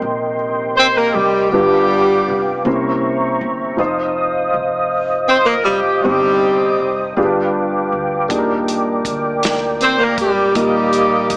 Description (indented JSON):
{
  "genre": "slow gospel",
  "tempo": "53 BPM (dotted quarters)",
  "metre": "6/8",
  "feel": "straight",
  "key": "C minor",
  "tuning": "A4 = 440 Hz",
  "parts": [
    { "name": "warm upright piano", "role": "accompaniment", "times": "0.0-11.4 s", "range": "G2 to C5", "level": "-20 LUFS", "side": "equal", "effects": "none" },
    { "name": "mellow tonewheel organ", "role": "sustained chords", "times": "0.0-11.4 s", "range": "Bb4 to Eb6", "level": "-19 LUFS", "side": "equal", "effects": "slow rotary speaker, chorus vibrato" },
    { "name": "upright bass", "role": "bass", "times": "0.0-11.4 s", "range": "F1 to Eb2", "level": "-31 LUFS", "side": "equal", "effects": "none" },
    { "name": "breathy tenor saxophone", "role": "melody", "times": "0.8-11.4 s", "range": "G3 to C4", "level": "-17 LUFS", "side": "equal", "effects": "none" },
    { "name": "warm saxophone section", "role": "melody", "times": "0.8-11.4 s", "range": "B3 to C5", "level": "-15 LUFS", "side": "equal", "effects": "none" },
    { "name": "natural country drum kit", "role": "drums", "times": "8.3-11.4 s", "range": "hi-hat, kick drum, snare drum", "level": "-22 LUFS", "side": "equal", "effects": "none" }
  ],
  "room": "moderate echo chamber reverb, RT60 2.8 s",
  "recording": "small speaker sound",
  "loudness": "-13 LUFS",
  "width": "side -26 dB against mid",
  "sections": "0.0-11.4 A section",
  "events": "none",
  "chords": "0.0 Cm7; 1.5 G7; 2.7 C7b9; 3.8 F5; 6.0 Cm/G; 7.2 G7; 8.3 Ebmaj7; 10.6 Bbsus4",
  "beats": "0.40 | 1.53 2.66 | 3.79 4.92 | 6.05 7.18 | 8.30 9.43 | 10.56"
}